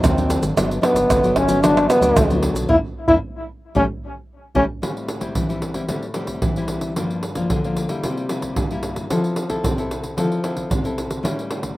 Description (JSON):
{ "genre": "samba and choro", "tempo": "112 BPM", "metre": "4/4", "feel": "straight", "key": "unclear", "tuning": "A4 = 440 Hz", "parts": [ { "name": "nylon-string guitar", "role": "accompaniment", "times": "0.0-11.7 s", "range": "G2 to A4", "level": "-23 LUFS", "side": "left 2 dB", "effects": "none" }, { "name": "rubbery square bass", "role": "bass", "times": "0.0-4.7 s", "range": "G1 to E2", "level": "-24 LUFS", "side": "right 1 dB", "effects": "none" }, { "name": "maracas, surdo, pandeiro and tamborim", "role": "percussion", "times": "0.0-11.8 s", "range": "none", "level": "-23 LUFS", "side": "right 2 dB", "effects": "none" }, { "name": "warm trombone", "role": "melody", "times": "0.1-4.6 s", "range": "B3 to E4", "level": "-17 LUFS", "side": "left 1 dB", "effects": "slapback echo" } ], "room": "little or no reverb", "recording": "recorded outdoors, with no room sound", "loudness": "-18 LUFS", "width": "side -17 dB against mid", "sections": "0.0-4.8 A section; 4.8-11.8 B section", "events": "band accent 2.7-4.8", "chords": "0.0 G#7#11; 0.6 Gmaj7; 2.7 N.C.; 3.8 A; 4.8 Am7; 7.0 Gm7; 8.0 C7; 9.1 Fmaj7; 11.2 A7" }